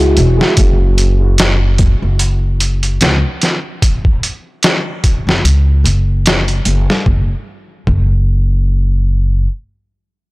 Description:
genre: trip hop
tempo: 74 BPM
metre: 4/4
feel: swing 56% on 16ths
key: unclear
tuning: A4 = 440 Hz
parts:
  - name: felt-muted upright piano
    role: accompaniment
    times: 0.0-0.6 s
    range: G#3 to F#4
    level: -18 LUFS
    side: right 1 dB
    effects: tremolo, low-pass filter, tape echo
  - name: upright bass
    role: bass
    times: 0.0-9.5 s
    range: E1 to C#2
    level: -12 LUFS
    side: equal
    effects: none
  - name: trip hop sampler-style drum kit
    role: drums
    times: 0.2-8.1 s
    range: hi-hat, kick drum, snare drum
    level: -14 LUFS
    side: equal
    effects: studio ambience
room: small room ambience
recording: blown-out, overdriven recording, overdrive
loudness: -11 LUFS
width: side -21 dB against mid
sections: 0.0-7.1 A section; 7.1-10.3 B section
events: none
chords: 0.0 Eadd9; 0.6 F#5; 7.1 N.C.

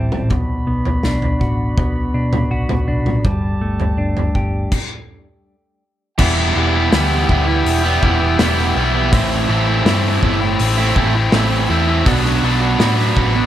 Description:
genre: post-rock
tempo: 82 BPM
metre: 4/4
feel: straight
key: E minor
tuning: A4 = 440 Hz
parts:
  - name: mellow brass ensemble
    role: sustained chords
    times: 0.0-13.5 s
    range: F#4 to B5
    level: -28 LUFS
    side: right 3 dB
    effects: none
  - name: clean electric guitar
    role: arpeggios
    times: 0.0-4.7 s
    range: B2 to G4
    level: -23 LUFS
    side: left 1 dB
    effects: analog delay
  - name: hollow-body short-scale picked electric bass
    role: bass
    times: 0.0-13.5 s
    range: E1 to B2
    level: -19 LUFS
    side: equal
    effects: none
  - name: loose indie drum kit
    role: drums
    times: 0.1-13.3 s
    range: crash cymbal, hi-hat, kick drum, snare drum, toms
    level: -20 LUFS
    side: equal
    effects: none
  - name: crunchy overdriven guitar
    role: riff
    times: 6.2-13.5 s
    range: A2 to F#4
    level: -20 LUFS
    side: right 11 dB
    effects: none
  - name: overdriven electric guitar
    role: riff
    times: 6.2-13.5 s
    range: A2 to F#4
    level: -18 LUFS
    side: left 6 dB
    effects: none
room: light reverb, studio reverb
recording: none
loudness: -14 LUFS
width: side -12 dB against mid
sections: 0.0-6.2 A section; 6.2-13.5 B section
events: stop 4.7-6.2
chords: 0.3 Bm; 3.2 Gsus2; 6.2 Emadd9; 9.1 Am7; 12.1 Bm

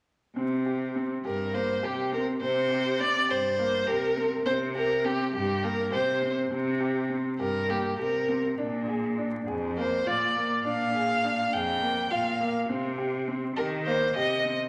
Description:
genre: contemporary instrumental, chamber music in an uneven meter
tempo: 205 BPM (eighths)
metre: 7/8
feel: straight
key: C minor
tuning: A4 = 440 Hz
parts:
  - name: bright concert grand piano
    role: arpeggios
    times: 0.4-14.6 s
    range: Bb3 to Ab4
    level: -34 LUFS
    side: equal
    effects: none
  - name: rich cello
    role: bass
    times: 0.4-14.6 s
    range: F2 to Eb3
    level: -34 LUFS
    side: equal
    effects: none
  - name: rich violin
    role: melody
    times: 1.3-14.6 s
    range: G4 to G5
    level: -29 LUFS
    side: equal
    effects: none
room: wet recital hall reverb, RT60 1.5 s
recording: vinyl crackle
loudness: -28 LUFS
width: mono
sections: 0.4-14.7 A section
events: none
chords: 0.4 C5; 8.6 Bb7; 12.7 Cm

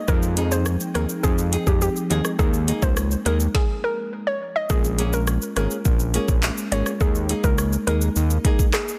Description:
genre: dancehall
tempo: 104 BPM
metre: 4/4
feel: straight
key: Bb dorian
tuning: A4 = 440 Hz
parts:
  - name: hollow square pluck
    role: melody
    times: 0.0-8.8 s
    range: G4 to Eb5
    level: -30 LUFS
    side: equal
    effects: chorus, tape echo
  - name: ethereal airy pad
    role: sustained chords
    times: 0.0-9.0 s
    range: F3 to G5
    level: -36 LUFS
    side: equal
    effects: none
  - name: marimba with medium mallets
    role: accompaniment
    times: 0.1-8.6 s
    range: F3 to Bb4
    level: -32 LUFS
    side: equal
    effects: none
  - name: fat analog bass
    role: bass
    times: 0.1-8.4 s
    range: Ab1 to F2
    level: -25 LUFS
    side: equal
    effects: none
  - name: afro-pop drum kit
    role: drums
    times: 0.1-9.0 s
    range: handclaps, hi-hat, kick drum, rim click, shaker, snare drum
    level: -24 LUFS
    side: equal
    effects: soft clipping on snare
  - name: flamenco guitar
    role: arpeggios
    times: 0.4-8.6 s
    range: Bb3 to Ab4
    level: -33 LUFS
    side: equal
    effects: tape echo
room: little or no reverb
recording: dense, heavily limited modern master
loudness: -22 LUFS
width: mono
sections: 0.0-4.7 A section; 4.7-9.0 B section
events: stop 3.5-4.7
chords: 0.1 Fm7; 2.4 Ebsus4; 4.7 Bbm7; 7.0 Ebsus4

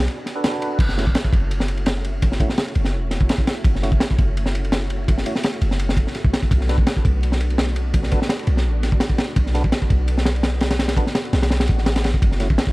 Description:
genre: drum and bass, jungle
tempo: 168 BPM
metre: 4/4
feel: straight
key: F# minor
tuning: A4 = 442 Hz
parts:
  - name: soft string machine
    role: sustained chords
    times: 0.0-12.7 s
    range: A3 to G#5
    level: -32 LUFS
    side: equal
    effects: ensemble chorus, vintage 12-bit sampler grit
  - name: warm 808-style bass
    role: bass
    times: 0.0-12.6 s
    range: E1 to B1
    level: -20 LUFS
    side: equal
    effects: tube saturation
  - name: crunchy breakbeat drum kit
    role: drums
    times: 0.0-12.7 s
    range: crash cymbal, kick drum, ride cymbal, snare drum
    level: -20 LUFS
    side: equal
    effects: none
  - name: mellow tonewheel organ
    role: stabs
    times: 0.4-12.5 s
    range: A3 to B4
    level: -30 LUFS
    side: right 2 dB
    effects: overdrive, chorus vibrato, slow rotary speaker, dub echo
  - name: swell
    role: sound effects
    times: 11.7-12.2 s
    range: none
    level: -38 LUFS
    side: equal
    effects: none
room: studio reverb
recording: dark, warm production, vinyl crackle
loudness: -17 LUFS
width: side -21 dB against mid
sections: 0.8-12.7 A section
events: break 0.1-0.8; drop 0.8-12.7; swell 11.7-12.2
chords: 0.0 Bm7; 0.8 F#m7; 6.5 Bm7; 12.2 F#m7

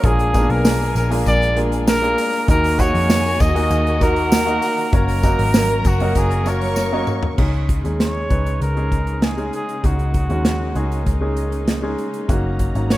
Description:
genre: piano-driven pop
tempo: 98 BPM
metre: 4/4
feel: straight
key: unclear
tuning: A4 = 440 Hz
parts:
  - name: warm trumpet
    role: melody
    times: 0.0-13.0 s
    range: F#4 to D#5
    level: -22 LUFS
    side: equal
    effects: none
  - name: dark studio violin section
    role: second line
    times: 0.0-7.4 s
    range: F#4 to C#6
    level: -28 LUFS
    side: left 1 dB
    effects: digital delay
  - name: clear baby grand piano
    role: accompaniment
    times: 0.0-13.0 s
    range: A#2 to F#5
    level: -23 LUFS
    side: equal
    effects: none
  - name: warm studio string section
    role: sustained chords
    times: 0.0-13.0 s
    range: C#3 to A#5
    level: -29 LUFS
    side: left 1 dB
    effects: none
  - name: vintage muted picked electric bass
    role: bass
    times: 0.0-13.0 s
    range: F#1 to E#2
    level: -20 LUFS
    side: equal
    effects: none
  - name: natural country drum kit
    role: drums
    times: 0.0-13.0 s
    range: crash cymbal, hi-hat, kick drum, snare drum, toms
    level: -20 LUFS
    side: equal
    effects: none
  - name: tambourine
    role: percussion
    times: 0.3-7.2 s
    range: none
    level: -35 LUFS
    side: left 5 dB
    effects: none
room: studio reverb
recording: rough home demo mix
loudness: -16 LUFS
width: side -16 dB against mid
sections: 0.0-7.4 A section; 7.4-13.0 B section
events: drum fill 6.8-7.4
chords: 0.0 A#7; 2.5 D#m; 4.9 F#; 7.4 C#sus2; 12.3 F#6

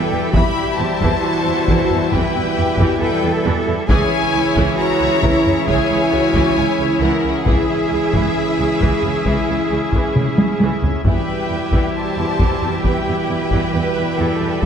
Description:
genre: cinematic, epic orchestral film score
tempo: 67 BPM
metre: 4/4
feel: straight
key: E minor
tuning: A4 = 439 Hz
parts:
  - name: warm symphonic violin section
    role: melody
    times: 0.0-14.7 s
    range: E5 to B5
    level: -25 LUFS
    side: left 5 dB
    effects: none
  - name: rich symphonic violin section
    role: second line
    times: 0.0-14.7 s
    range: G#4 to E5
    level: -25 LUFS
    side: left 3 dB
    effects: none
  - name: rich symphonic viola section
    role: accompaniment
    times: 0.0-14.6 s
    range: C#3 to E4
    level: -26 LUFS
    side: right 1 dB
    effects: none
  - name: clear trombone section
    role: sustained chords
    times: 0.0-14.7 s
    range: B2 to E3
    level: -24 LUFS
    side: right 4 dB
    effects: none
  - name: dark French horn section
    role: sustained chords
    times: 0.0-14.7 s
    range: G3 to E4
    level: -25 LUFS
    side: left 3 dB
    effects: none
  - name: pipe organ, strings celeste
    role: sustained chords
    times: 0.0-14.6 s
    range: G3 to E5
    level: -25 LUFS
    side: left 1 dB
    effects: none
  - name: rich symphonic cello section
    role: bass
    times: 0.0-14.7 s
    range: E4 to B4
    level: -24 LUFS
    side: right 1 dB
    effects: none
  - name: rich studio double bass section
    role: bass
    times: 0.1-14.7 s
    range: C#2 to E2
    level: -23 LUFS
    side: right 3 dB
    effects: none
  - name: taiko ensemble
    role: drums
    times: 0.3-14.7 s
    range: none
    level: -19 LUFS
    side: equal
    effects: none
room: moderate concert hall reverb, RT60 2.1 s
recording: none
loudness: -15 LUFS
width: side -8 dB against mid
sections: 0.0-14.7 A section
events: drum fill 10.2-11.1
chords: 0.0 Em; 3.9 C#m; 11.1 Em

